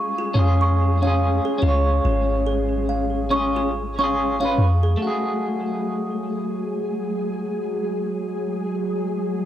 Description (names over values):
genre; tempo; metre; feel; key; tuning
trip hop; 71 BPM; 4/4; swing 60% on 16ths; F# harmonic minor; A4 = 440 Hz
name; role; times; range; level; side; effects
electric guitar at the edge of break-up; accompaniment; 0.0-9.5 s; A3 to C#5; -24 LUFS; left 1 dB; harmonic tremolo, vintage 12-bit sampler grit, tape echo
music box; arpeggios; 0.0-5.0 s; E#4 to C#6; -26 LUFS; right 2 dB; tape echo
flickering grainy texture; texture; 0.0-9.5 s; G#3 to G#4; -32 LUFS; left 1 dB; built-in reverb
soft 808-style bass; bass; 0.3-5.0 s; G#1 to E#2; -21 LUFS; equal; none
warbly tape-like pad; sustained chords; 5.0-9.5 s; F#3 to G#4; -26 LUFS; right 1 dB; chorus, built-in reverb
room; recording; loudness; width
light reverb, digital ambience; none; -20 LUFS; side -11 dB against mid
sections
0.0-5.0 A section; 5.0-9.5 B section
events
none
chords
0.0 C#; 5.0 F#madd9